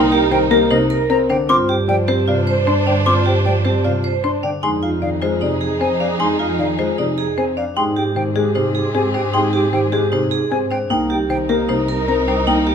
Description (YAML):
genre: classical, minimalist pattern music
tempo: 153 BPM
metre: 4/4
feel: straight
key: F dorian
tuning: A4 = 440 Hz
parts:
  - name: buzzing marimba with hard mallets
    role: melody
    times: 0.0-12.7 s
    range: Ab4 to C6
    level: -22 LUFS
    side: left 5 dB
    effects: none
  - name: mellow wooden-headed alto flute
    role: second line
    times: 0.0-12.7 s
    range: Eb4 to C5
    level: -26 LUFS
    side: right 3 dB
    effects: none
  - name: dark concert grand piano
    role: accompaniment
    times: 0.0-12.7 s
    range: C3 to D4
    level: -22 LUFS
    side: left 2 dB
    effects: none
  - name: warm studio string section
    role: sustained chords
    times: 0.0-12.7 s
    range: C4 to C5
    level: -26 LUFS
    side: equal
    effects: none
  - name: vibraphone with hard mallets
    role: arpeggios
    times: 0.0-12.7 s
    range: D4 to C5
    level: -21 LUFS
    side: right 3 dB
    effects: none
  - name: warm studio double bass section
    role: bass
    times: 0.0-12.7 s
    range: C2 to Ab2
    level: -23 LUFS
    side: right 2 dB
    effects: none
  - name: hollow concert flute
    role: arpeggios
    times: 0.1-12.7 s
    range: Eb5 to D6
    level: -24 LUFS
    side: left 1 dB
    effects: none
room: light reverb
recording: none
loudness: -15 LUFS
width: side -7 dB against mid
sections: 0.0-12.7 A section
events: none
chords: 0.0 Cm7; 1.5 Gsus4; 4.6 Fm7; 7.8 Abmaj7; 10.9 Cm7